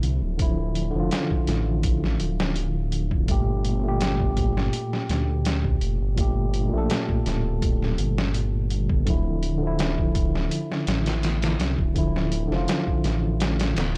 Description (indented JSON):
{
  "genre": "trip hop",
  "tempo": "83 BPM",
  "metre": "4/4",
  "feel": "straight",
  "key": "G dorian",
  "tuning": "A4 = 440 Hz",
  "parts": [
    { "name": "tine electric piano", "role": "accompaniment", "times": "0.0-14.0 s", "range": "Bb2 to A4", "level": "-29 LUFS", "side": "equal", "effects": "harmonic tremolo, tape echo" },
    { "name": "dark detuned saw bass", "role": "bass", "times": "0.0-14.0 s", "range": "D1 to D2", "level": "-28 LUFS", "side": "equal", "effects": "none" },
    { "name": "trip hop sampler-style drum kit", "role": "drums", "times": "0.0-14.0 s", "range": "hi-hat, kick drum, snare drum", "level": "-28 LUFS", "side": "equal", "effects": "none" }
  ],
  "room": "little or no reverb",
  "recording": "dry, gritty hardware recording",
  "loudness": "-24 LUFS",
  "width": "mono",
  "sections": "0.0-14.0 A section",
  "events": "none",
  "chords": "0.0 Dmadd9; 3.3 Gmadd9; 9.1 Dmadd9"
}